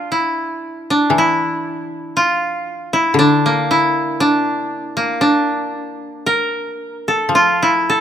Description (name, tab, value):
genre	japanese traditional, Japanese chamber music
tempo	58 BPM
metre	2/4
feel	uneven beats, rubato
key	D hirajoshi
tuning	A4 = 439 Hz
part	koto	melody	0.0-8.0 s	Bb3 to Bb4	-15 LUFS	equal	none
part	koto	accompaniment	1.1-8.0 s	D3 to F3	-21 LUFS	left 4 dB	none
room	light reverb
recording	close, detailed microphones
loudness	-15 LUFS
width	side -9 dB against mid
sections	0.0-8.0 A section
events	none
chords	none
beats	0.08 | 1.13 2.15 | 3.16 4.18 | 5.18 6.22 | 7.30